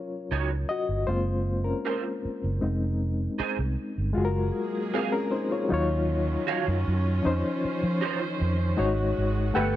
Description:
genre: soul.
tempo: 78 BPM.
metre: 4/4.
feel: straight.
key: unclear.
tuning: A4 = 440 Hz.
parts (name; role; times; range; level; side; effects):
reed electric piano; accompaniment; 0.0-9.8 s; F3 to G5; -28 LUFS; left 3 dB; overdrive, fast tremolo.
electric guitar through a small old amp; riff; 0.3-9.7 s; Eb4 to F#5; -31 LUFS; right 8 dB; ensemble chorus.
vintage muted fingered electric bass; bass; 0.3-9.8 s; F1 to F3; -27 LUFS; right 1 dB; none.
warm studio string section; sustained chords; 4.2-9.8 s; Eb3 to C5; -33 LUFS; right 2 dB; none.
room: light reverb.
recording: none.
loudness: -25 LUFS.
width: side -13 dB against mid.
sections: 0.0-4.2 A section; 4.2-9.8 B section.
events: reed electric piano solo 0.0-4.2; reed electric piano fill 9.2-9.8.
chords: 0.0 Ebm7; 1.1 Gbmaj9#11; 2.6 Fm7; 4.2 Gbmaj9; 5.7 Ebm9; 7.2 Dbmaj9/F; 8.8 Ab7sus4.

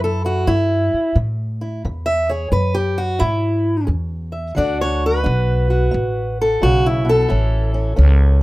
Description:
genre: acoustic country blues, solo or duo.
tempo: 88 BPM.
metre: 4/4.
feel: swing 66% on 8ths.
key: A major.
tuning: A4 = 440 Hz.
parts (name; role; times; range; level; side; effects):
fingerpicked steel-string acoustic guitar; melody; 0.0-8.4 s; A2 to E5; -18 LUFS; equal; none.
upright bass; bass; 0.0-8.4 s; A1 to A2; -18 LUFS; equal; none.
room: light reverb.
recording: rough home demo mix.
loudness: -16 LUFS.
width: side -19 dB against mid.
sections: 0.0-8.4 A section.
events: steel-string acoustic guitar solo 0.0-8.4.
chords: 0.0 A5; 1.8 E; 4.6 D; 7.3 A.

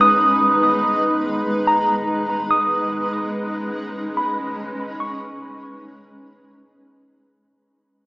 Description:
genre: ambient.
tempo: 72 BPM.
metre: 3/4.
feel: straight.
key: G# minor.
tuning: A4 = 440 Hz.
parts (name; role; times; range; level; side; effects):
granular cloud pad; sustained chords; 0.0-7.5 s; G#3 to B4; -23 LUFS; equal; built-in reverb.
tine electric piano; arpeggios; 0.0-7.5 s; A#5 to D#6; -19 LUFS; equal; overdrive, fast stereo tremolo, tape echo.
room: wet cathedral reverb, RT60 5.0 s.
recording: in a vast, echoing space, small speaker sound.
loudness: -18 LUFS.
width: side -25 dB against mid.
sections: 0.0-7.5 A section.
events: fade-out 0.8-7.5.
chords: 0.0 G#madd9.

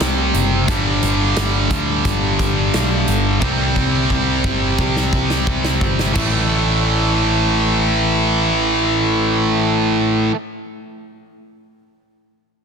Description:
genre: hard rock.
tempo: 88 BPM.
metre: 4/4.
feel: straight.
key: unclear.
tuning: A4 = 440 Hz.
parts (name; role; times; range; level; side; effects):
tight distorted guitar; riff; 0.0-10.4 s; G2 to C4; -17 LUFS; right 1 dB; distortion.
overdriven picked electric bass; bass; 0.0-10.3 s; F#1 to D2; -21 LUFS; equal; none.
big rock drum kit; drums; 0.0-6.3 s; crash cymbal, hi-hat, kick drum, snare drum; -23 LUFS; left 1 dB; none.
room: little or no reverb.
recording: dense, heavily limited modern master.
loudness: -15 LUFS.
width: side -6 dB against mid.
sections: 0.0-6.2 A section; 6.2-8.9 B section.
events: drum fill 3.4-6.2.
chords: 0.0 C5; 0.7 G5; 3.4 C5; 6.2 A5.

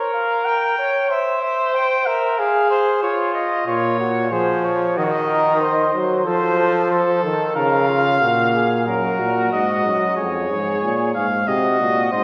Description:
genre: classical, imitative canzona for brass ensemble.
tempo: 92 BPM.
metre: 4/4.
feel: straight.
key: Bb minor.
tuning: A4 = 440 Hz.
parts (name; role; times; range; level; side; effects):
clear trumpet; melody; 0.0-12.2 s; A4 to G5; -23 LUFS; equal; none.
warm flugelhorn; second line; 0.0-12.2 s; F4 to Db5; -23 LUFS; equal; none.
bright trombone; accompaniment; 3.7-8.9 s; Bb2 to Gb3; -23 LUFS; equal; none.
warm euphonium; bass; 8.9-12.2 s; F2 to C3; -25 LUFS; equal; none.
room: wet concert hall reverb, RT60 2.2 s.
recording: recorded in a church or concert hall.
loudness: -19 LUFS.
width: mono.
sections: 0.0-8.9 A section; 8.9-12.2 B section.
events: none.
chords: 0.0 Gdim/Bb; 1.1 C; 2.4 Fm/Ab; 3.7 Bbm; 5.0 Cdim/Eb; 6.3 F; 7.6 Bbm/Db; 8.9 Ebm/Gb; 10.2 Db/F; 11.5 Cdim.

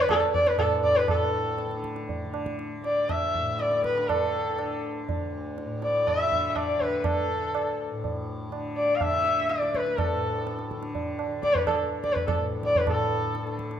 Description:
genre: indian classical, Hindustani.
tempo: 122 BPM.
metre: 3/4.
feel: straight.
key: unclear.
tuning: A4 = 440 Hz.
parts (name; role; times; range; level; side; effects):
dark sarangi; melody; 0.0-13.6 s; A4 to F5; -25 LUFS; left 1 dB; none.
tanpura; drone; 0.0-13.8 s; D2 to D3; -34 LUFS; left 1 dB; none.
tabla; percussion; 0.1-13.8 s; none; -30 LUFS; right 3 dB; none.
room: moderate recital hall reverb, RT60 1.6 s.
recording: minimal, uncompressed stereo recording.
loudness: -24 LUFS.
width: side -9 dB against mid.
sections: 0.0-1.1 A section; 1.1-12.9 B section.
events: speeding up 0.0-13.8.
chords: none.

